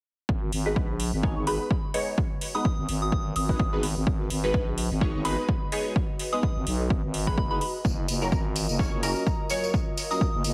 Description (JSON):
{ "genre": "bass house", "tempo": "127 BPM", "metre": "4/4", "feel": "swing 56% on 16ths", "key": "G# dorian", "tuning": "A4 = 441 Hz", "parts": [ { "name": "growling FM bass", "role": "bass", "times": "0.3-10.5 s", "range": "F#1 to B1", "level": "-32 LUFS", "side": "equal", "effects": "overdrive, sidechain pumping" }, { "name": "electronic kick drum", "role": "drums", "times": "0.3-10.3 s", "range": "none", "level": "-29 LUFS", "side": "equal", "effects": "overdrive" }, { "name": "airy breathy pad", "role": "texture", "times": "0.3-10.5 s", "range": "E#4 to D#5", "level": "-41 LUFS", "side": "equal", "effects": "chorus, sidechain pumping" }, { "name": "electronic hi-hat", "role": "drums", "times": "0.5-10.5 s", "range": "none", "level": "-38 LUFS", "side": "equal", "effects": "overdrive" }, { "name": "band-passed chord stab", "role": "stabs", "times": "0.7-10.2 s", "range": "F#3 to C#5", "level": "-34 LUFS", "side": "equal", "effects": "phaser, ensemble chorus, cassette tape, sidechain pumping, delay" }, { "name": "soft synth bell", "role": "melody", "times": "1.5-10.2 s", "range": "A#5 to D#6", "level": "-36 LUFS", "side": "equal", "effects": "chorus, phaser, delay" }, { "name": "tambourine", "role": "percussion", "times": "7.8-10.5 s", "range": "none", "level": "-37 LUFS", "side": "equal", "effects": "none" } ], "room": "light reverb, digital ambience", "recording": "heavily compressed radio sound, multiband compression", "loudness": "-27 LUFS", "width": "mono", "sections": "0.3-10.5 A section", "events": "fade-in on analog synth pad 0.3-10.5; filter sweep on synth stab 0.3-10.5", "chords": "0.3 G#m; 7.8 F#", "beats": "| 0.29 0.76 1.23 1.71 | 2.18 2.65 3.12 3.60 | 4.07 4.54 5.01 5.49 | 5.96 6.43 6.90 7.38 | 7.85 8.32 8.79 9.27 | 9.74 10.21" }